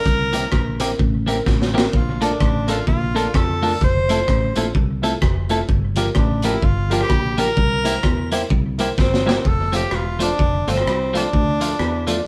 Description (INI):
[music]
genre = ska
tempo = 128 BPM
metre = 4/4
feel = swing 60% on 8ths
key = F major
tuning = A4 = 440 Hz
[part]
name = clear tenor saxophone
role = melody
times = 0.0-12.3 s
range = C4 to C5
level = -25 LUFS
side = equal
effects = none
[part]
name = fingered electric bass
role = bass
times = 0.1-12.2 s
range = E1 to F2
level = -25 LUFS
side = equal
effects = none
[part]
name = crunchy breakbeat drum kit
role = drums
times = 0.1-12.2 s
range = hi-hat, kick drum, rim click, snare drum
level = -23 LUFS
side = equal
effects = none
[part]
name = clean electric guitar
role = accompaniment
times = 0.3-12.2 s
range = E3 to A4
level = -26 LUFS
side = equal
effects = none
[part]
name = clear upright piano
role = stabs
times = 0.3-12.2 s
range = Bb3 to D5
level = -28 LUFS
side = equal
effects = none
[sound]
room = moderate studio reverb, RT60 0.5 s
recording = band playing live in one room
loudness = -19 LUFS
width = mono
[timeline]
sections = 0.0-9.4 A section; 9.4-12.3 B section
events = drum fill 1.5-1.9, 9.0-9.4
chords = 0.1 C7; 1.9 Bbmaj7; 3.8 Fmaj7; 5.7 Gm7; 7.6 C7; 9.4 F; 11.3 Dm